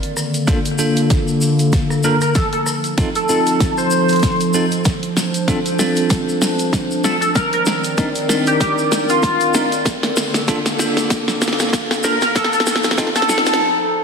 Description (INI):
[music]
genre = glitch hop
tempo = 96 BPM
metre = 4/4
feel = swing 56% on 16ths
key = unclear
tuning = A4 = 440 Hz
[part]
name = warbly tape-like pad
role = sustained chords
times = 0.0-14.0 s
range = D3 to D5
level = -21 LUFS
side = equal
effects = chorus, built-in reverb, sidechain pumping
[part]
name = pop drum kit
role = drums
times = 0.0-13.7 s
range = hi-hat, rim click, snare drum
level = -21 LUFS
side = equal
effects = none
[part]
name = tube shaker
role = percussion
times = 0.2-13.6 s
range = none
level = -27 LUFS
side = left 2 dB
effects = none
[part]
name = bell-like tine electric piano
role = stabs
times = 0.5-13.6 s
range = Bb3 to Bb4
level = -22 LUFS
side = equal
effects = fast stereo tremolo, sidechain pumping, low-pass filter, ping-pong delay
[part]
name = electronic kick drum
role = drums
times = 0.5-13.1 s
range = none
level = -20 LUFS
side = equal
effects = none
[part]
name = sync lead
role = melody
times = 2.0-13.6 s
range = F4 to C5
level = -19 LUFS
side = equal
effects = wide subtle chorus, ping-pong delay
[sound]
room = wet lush hall reverb, RT60 2.0 s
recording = dense, heavily limited modern master, vinyl crackle, high-pass filter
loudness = -14 LUFS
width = side -6 dB against mid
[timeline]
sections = 0.0-14.0 A section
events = build-up 0.0-14.0; drum fill 0.0-13.6; filter sweep 0.0-14.0; break 13.6-14.0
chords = 0.0 Bbmaj7; 2.4 F7; 4.9 Dm7; 7.4 Cm9; 9.9 Bbmaj7; 12.4 F7